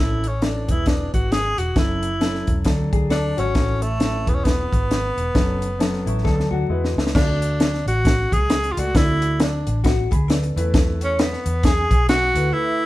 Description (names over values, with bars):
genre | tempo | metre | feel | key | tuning
uptempo 1960s-style soul | 134 BPM | 4/4 | swing 60% on 8ths | unclear | A4 = 440 Hz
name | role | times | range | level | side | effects
breathy tenor saxophone | melody | 0.0-12.9 s | A3 to G#4 | -23 LUFS | equal | none
warm grand piano | accompaniment | 0.0-12.9 s | E3 to C#6 | -28 LUFS | left 2 dB | none
vintage muted fingered electric bass | bass | 0.0-12.5 s | E1 to E2 | -23 LUFS | equal | none
compact cocktail drum kit | drums | 0.2-12.4 s | crash cymbal, hi-hat, kick drum, snare drum | -20 LUFS | equal | none
vintage hollow-body jazz guitar | riff | 2.9-6.9, 9.8-10.7 s | E4 to A4 | -28 LUFS | left 7 dB | none
vibraphone with hard mallets | second line | 11.0-12.9 s | B4 to G#5 | -30 LUFS | right 4 dB | none
room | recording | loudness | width
light reverb | band playing live in one room, vinyl crackle | -18 LUFS | side -16 dB against mid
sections
0.0-7.1 A section; 7.1-12.9 B section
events
grand piano fill 5.8-7.1; drum fill 6.3-7.1; break 12.5-12.9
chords
0.0 A; 0.6 E; 1.8 F#m; 2.7 D; 3.6 A; 4.2 E; 5.4 F#m; 6.3 D; 6.7 E; 7.1 D; 10.5 Esus4